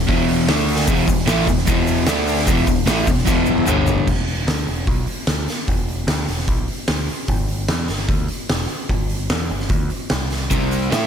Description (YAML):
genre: garage rock duo or trio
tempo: 149 BPM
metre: 4/4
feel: straight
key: E minor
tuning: A4 = 445 Hz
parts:
  - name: crunchy overdriven guitar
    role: riff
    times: 0.0-4.1, 10.5-11.1 s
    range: E2 to A4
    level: -18 LUFS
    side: equal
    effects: none
  - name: growling picked electric bass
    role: bass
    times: 0.0-11.1 s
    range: E1 to A2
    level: -24 LUFS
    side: equal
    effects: overdrive
  - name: oversized low-tuned drum kit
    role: drums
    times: 0.1-11.0 s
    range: crash cymbal, hi-hat, kick drum, snare drum, toms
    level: -20 LUFS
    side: equal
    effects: none
  - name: egg shaker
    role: percussion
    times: 0.9-4.0, 10.5-11.0 s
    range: none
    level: -32 LUFS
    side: left 6 dB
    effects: none
room: light reverb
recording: none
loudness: -17 LUFS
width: side -8 dB against mid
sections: 0.0-4.1 A section; 4.1-11.1 B section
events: drum fill 3.3-4.1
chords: 0.5 D5; 0.9 E5; 2.1 D5; 2.5 E5; 3.7 G5; 4.1 E5; 7.3 G5; 10.1 N.C.; 10.5 C5